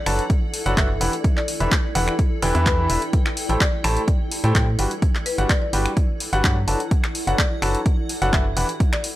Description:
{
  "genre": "piano house",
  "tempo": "127 BPM",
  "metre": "4/4",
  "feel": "straight",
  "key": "unclear",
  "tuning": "A4 = 440 Hz",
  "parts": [
    { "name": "granular cloud pad", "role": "texture", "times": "0.0-9.2 s", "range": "E4 to G5", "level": "-31 LUFS", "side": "equal", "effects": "built-in reverb, sidechain pumping" },
    { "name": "clear concert grand piano", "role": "riff", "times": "0.1-8.7 s", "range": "E3 to A5", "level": "-24 LUFS", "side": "equal", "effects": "sidechain pumping" },
    { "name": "organ-like FM bass", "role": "bass", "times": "0.1-8.6 s", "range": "E1 to A2", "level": "-22 LUFS", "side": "equal", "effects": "sidechain pumping" },
    { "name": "punchy analog drum machine", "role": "drums", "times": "0.1-9.1 s", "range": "finger snaps, handclaps, hi-hat", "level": "-26 LUFS", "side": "equal", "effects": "overdrive, studio reverb" },
    { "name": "electronic kick drum", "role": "drums", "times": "0.3-8.9 s", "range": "none", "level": "-20 LUFS", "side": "equal", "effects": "overdrive, studio reverb" },
    { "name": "marimba with medium hard mallets", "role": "melody", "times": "0.8-9.1 s", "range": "B4 to E5", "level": "-32 LUFS", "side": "left 2 dB", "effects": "tape echo" }
  ],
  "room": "little or no reverb",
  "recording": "dry, gritty hardware recording",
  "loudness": "-18 LUFS",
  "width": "side -15 dB against mid",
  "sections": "0.0-9.2 A section",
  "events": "none",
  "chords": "0.0 Bm7/F#; 1.0 Em7; 3.1 Am7; 4.8 Gmaj7; 6.7 Bm7; 8.6 Em7",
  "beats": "0.30 0.77 | 1.24 1.72 2.19 2.66 | 3.13 3.61 4.08 4.55 | 5.02 5.50 5.97 6.44 | 6.91 7.39 7.86 8.33 | 8.80"
}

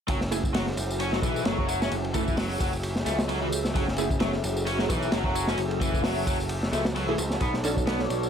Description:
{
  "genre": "breakbeat, breaks",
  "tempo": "131 BPM",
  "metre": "4/4",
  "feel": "swing 56% on 16ths",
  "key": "F# minor",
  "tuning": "A4 = 440 Hz",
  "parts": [
    { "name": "phased analog pad", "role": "sustained chords", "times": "0.4-8.3 s", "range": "F#3 to E5", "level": "-32 LUFS", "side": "equal", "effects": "phaser, chorus, sidechain pumping" },
    { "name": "raw garage guitar", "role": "riff", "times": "0.1-8.0 s", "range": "E3 to C#4", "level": "-31 LUFS", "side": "left 1 dB", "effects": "overdrive, digital delay" },
    { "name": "overdriven picked electric bass", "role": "bass", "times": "0.1-8.3 s", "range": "F#1 to C#2", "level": "-31 LUFS", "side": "equal", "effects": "none" },
    { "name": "crunchy breakbeat drum kit", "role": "drums", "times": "0.1-8.2 s", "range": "hi-hat, kick drum, ride cymbal, snare drum", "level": "-28 LUFS", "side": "equal", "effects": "none" },
    { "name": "tambourine", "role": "drums", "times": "0.1-8.3 s", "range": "none", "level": "-38 LUFS", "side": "equal", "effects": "none" },
    { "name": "orchestra-hit-like synth stab", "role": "stabs", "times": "0.3-4.0, 7.1-7.7 s", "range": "A3 to A4", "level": "-32 LUFS", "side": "right 3 dB", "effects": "built-in reverb, digital delay" }
  ],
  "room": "light reverb",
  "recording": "none",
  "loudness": "-24 LUFS",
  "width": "side -8 dB against mid",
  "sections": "0.1-8.3 A section",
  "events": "none",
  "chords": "0.1 F#m9; 7.4 Bm9",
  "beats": "| 0.09 0.55 1.00 1.46 | 1.92 2.38 2.84 3.29 | 3.75 4.21 4.67 5.13 | 5.58 6.04 6.50 6.96 | 7.42 7.87"
}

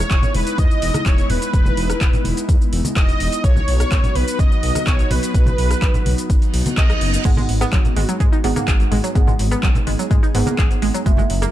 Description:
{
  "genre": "progressive house",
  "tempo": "126 BPM",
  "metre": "4/4",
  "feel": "straight",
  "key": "G# minor",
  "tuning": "A4 = 441 Hz",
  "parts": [
    { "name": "wide unison lead", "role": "melody", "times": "0.0-7.2 s", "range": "B4 to D#5", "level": "-25 LUFS", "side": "right 1 dB", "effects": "lush chorus, digital delay" },
    { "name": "airy breathy pad", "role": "sustained chords", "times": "0.0-11.5 s", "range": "C#3 to G#4", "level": "-26 LUFS", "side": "left 1 dB", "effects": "chorus, sidechain pumping" },
    { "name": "dark detuned saw bass", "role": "bass", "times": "0.0-11.5 s", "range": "E1 to G#2", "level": "-21 LUFS", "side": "equal", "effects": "sidechain pumping" },
    { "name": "deep house drum kit", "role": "drums", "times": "0.0-11.5 s", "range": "crash cymbal, handclaps, hi-hat, rim click, shaker", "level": "-26 LUFS", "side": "left 1 dB", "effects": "overdrive, sidechain pumping on hats, sidechain pumping on perc, sidechain pumping on cymbals" },
    { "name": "electronic kick drum", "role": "drums", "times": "0.1-11.2 s", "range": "none", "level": "-16 LUFS", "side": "equal", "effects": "overdrive" },
    { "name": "congas", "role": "percussion", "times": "0.2-11.3 s", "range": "none", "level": "-26 LUFS", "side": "right 1 dB", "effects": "sidechain pumping on perc" },
    { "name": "reverse cymbal", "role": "sound effects", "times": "6.5-7.2 s", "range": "none", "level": "-29 LUFS", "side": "right 6 dB", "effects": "none" },
    { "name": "analog pluck", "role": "arpeggios", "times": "7.2-11.4 s", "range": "G#2 to G#4", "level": "-24 LUFS", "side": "right 1 dB", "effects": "chorus, sidechain pumping, digital delay" },
    { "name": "deep mellow chord stab", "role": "stabs", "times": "7.2-11.5 s", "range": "G#2 to F#5", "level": "-25 LUFS", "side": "right 4 dB", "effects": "chorus, sidechain pumping, digital delay" }
  ],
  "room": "little or no reverb",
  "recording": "dark, warm production",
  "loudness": "-15 LUFS",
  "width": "side -13 dB against mid",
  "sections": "0.0-11.5 A section",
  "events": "reverse cymbal 6.5-7.2",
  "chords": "0.0 Emaj7; 3.4 B; 7.2 G#m7",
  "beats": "0.11 0.58 1.06 | 1.53 2.01 2.49 2.96 | 3.44 3.92 4.39 4.87 | 5.34 5.82 6.30 6.77 | 7.25 7.73 8.20 8.68 | 9.15 9.63 10.11 10.58 | 11.06"
}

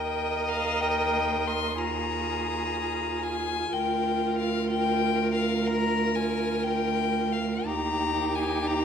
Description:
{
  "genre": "classical, slow romantic movement for string quartet",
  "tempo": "61 BPM",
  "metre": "4/4",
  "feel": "rubato",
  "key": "Eb major",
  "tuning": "A4 = 439 Hz",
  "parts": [
    { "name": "dark violin", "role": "melody", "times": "0.0-8.8 s", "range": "F5 to C6", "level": "-29 LUFS", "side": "left 8 dB", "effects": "none" },
    { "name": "warm violin", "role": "second line", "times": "0.0-8.8 s", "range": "G4 to Eb5", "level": "-32 LUFS", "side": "left 1 dB", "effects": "none" },
    { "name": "warm viola", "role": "accompaniment", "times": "0.0-8.8 s", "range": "Eb4 to Bb4", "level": "-31 LUFS", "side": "right 4 dB", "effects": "none" },
    { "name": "warm cello", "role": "bass", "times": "0.0-8.8 s", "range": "D2 to Eb2", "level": "-31 LUFS", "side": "right 4 dB", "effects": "none" }
  ],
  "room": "wet recital hall reverb, RT60 1.7 s",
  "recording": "recorded in a church or concert hall",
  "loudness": "-25 LUFS",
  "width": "side -7 dB against mid",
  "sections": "0.0-8.8 A section",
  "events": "none",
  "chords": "0.0 Eb5; 1.8 Fm7/Eb; 3.7 Bb/D; 7.7 Eb",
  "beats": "0.81 1.79 2.75 | 3.73 4.71 5.67 6.64 | 7.69 8.69"
}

